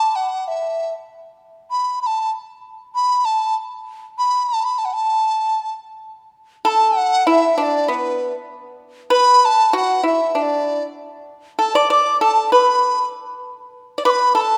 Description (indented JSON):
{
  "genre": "chinese traditional, Chinese chamber ensemble",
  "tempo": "97 BPM",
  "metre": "2/4",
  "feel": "straight",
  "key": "A zhi mode",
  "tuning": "A4 = 440 Hz",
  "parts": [
    { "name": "mellow hollow dizi", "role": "melody", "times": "0.0-14.6 s", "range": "B4 to D6", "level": "-19 LUFS", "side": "equal", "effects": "none" },
    { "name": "pipa", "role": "second line", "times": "6.6-14.6 s", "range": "B3 to D5", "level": "-20 LUFS", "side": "equal", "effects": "none" }
  ],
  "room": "moderate concert hall reverb, RT60 2.3 s",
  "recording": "none",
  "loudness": "-18 LUFS",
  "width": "mono",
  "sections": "0.0-6.0 A section; 6.0-14.6 B section",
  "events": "none",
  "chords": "none"
}